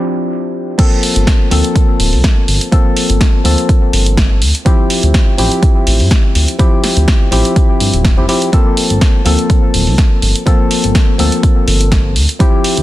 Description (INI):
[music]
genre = deep house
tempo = 124 BPM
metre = 4/4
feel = swing 54% on 16ths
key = G minor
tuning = A4 = 441 Hz
[part]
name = percussive organ stab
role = stabs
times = 0.0-12.8 s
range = F3 to A4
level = -16 LUFS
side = left 1 dB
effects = chorus, analog delay
[part]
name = electronic kick drum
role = drums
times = 0.8-12.5 s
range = none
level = -11 LUFS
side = equal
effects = overdrive
[part]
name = punchy analog drum machine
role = drums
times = 0.8-12.8 s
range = crash cymbal, hi-hat, snare drum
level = -17 LUFS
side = right 1 dB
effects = none
[part]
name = smooth synth bass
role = bass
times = 1.2-12.8 s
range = D1 to G2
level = -13 LUFS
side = equal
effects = sidechain pumping
[sound]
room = light reverb, digital ambience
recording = dense, heavily limited modern master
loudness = -9 LUFS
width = side -15 dB against mid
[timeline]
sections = 0.8-12.8 A section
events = drop 0.8-12.8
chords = 0.0 Dm11; 0.8 Gm11; 4.4 Dm11; 8.5 Gm11; 12.2 Dm11